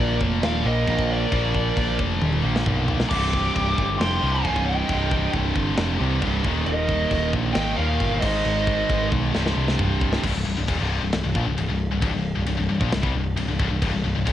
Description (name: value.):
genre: heavy metal.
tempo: 134 BPM.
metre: 4/4.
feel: straight.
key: C minor.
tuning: A4 = 440 Hz.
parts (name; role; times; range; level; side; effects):
high-gain lead guitar; melody; 0.0-9.1 s; D5 to D6; -27 LUFS; equal; distortion, cassette tape, analog delay.
high-gain lead guitar; second line; 0.0-9.1 s; Bb4 to G5; -32 LUFS; right 8 dB; distortion, cassette tape.
distorted electric guitar; riff; 0.0-10.2 s; C2 to Bb3; -28 LUFS; right 8 dB; overdrive, cassette tape.
heavy high-gain guitar; riff; 0.0-14.3 s; C2 to Bb3; -29 LUFS; left 9 dB; distortion, cassette tape.
scooped high-gain guitar; riff; 0.0-14.3 s; C2 to Bb3; -30 LUFS; left 1 dB; distortion, cassette tape.
growling picked electric bass; bass; 0.0-14.3 s; C1 to Eb2; -25 LUFS; equal; overdrive.
tight metal drum kit; drums; 0.2-14.3 s; china cymbal, crash cymbal, kick drum, snare drum, toms; -27 LUFS; equal; cassette tape.
room: studio ambience.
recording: home recording on cassette.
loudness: -20 LUFS.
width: side -12 dB against mid.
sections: 0.0-10.2 A section; 10.2-14.3 B section.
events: drum fill 2.2-3.1, 9.3-10.2.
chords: 0.0 Bb; 3.1 C5; 6.4 Eb5; 8.2 Ab; 9.3 C5; 10.2 Cm.